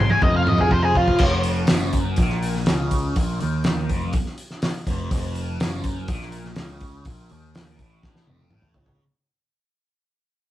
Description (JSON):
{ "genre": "psychedelic rock", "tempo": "123 BPM", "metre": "4/4", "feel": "straight", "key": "F phrygian dominant", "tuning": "A4 = 440 Hz", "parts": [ { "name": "octave-fuzz lead guitar", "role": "melody", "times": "0.0-1.2 s", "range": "F4 to C6", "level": "-20 LUFS", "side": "equal", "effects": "distortion" }, { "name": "thick fuzz guitar", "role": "riff", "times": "0.0-9.0 s", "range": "F2 to C4", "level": "-28 LUFS", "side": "equal", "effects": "distortion, phaser" }, { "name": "picked electric bass", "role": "bass", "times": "0.0-9.0 s", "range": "F1 to F2", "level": "-26 LUFS", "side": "equal", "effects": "none" }, { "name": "cloth-damped thuddy drum kit", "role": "drums", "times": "0.1-9.0 s", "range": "crash cymbal, hi-hat, kick drum, snare drum, toms", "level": "-22 LUFS", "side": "equal", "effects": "none" } ], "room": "moderate studio reverb, RT60 0.6 s", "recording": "rough rehearsal-room recording", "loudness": "-19 LUFS", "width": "side -14 dB against mid", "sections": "0.0-1.2 A section; 1.2-9.0 B section", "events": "lead electric guitar solo 0.0-1.2; drum fill 0.7-1.2, 8.0-9.0; fade-out 1.2-9.0", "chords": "0.0 F" }